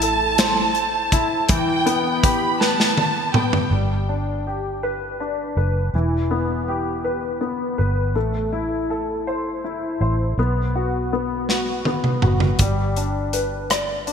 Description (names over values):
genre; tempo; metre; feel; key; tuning
six-eight pop ballad; 54 BPM (dotted quarters); 6/8; straight; E minor; A4 = 440 Hz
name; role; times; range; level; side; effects
warm studio violin section; second line; 0.0-3.7 s; G5 to B5; -22 LUFS; right 3 dB; none
clear baby grand piano; accompaniment; 0.0-14.1 s; E3 to D5; -23 LUFS; left 2 dB; analog chorus
vintage muted fingered electric bass; bass; 0.0-14.1 s; E1 to B1; -23 LUFS; right 1 dB; none
modern studio drum kit; drums; 0.0-3.7, 11.5-14.1 s; hi-hat, kick drum, rim click, snare drum, toms; -20 LUFS; equal; gated reverb
room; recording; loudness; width
moderate lush hall reverb, RT60 2.3 s; bright 1980s-style digital production; -19 LUFS; side -7 dB against mid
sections
0.0-3.7 A section; 3.7-14.1 B section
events
drum fill 2.6-3.7, 11.5-12.6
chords
0.0 Am; 1.5 Em; 3.7 G; 5.9 Em; 8.2 Am; 10.4 B5; 12.6 G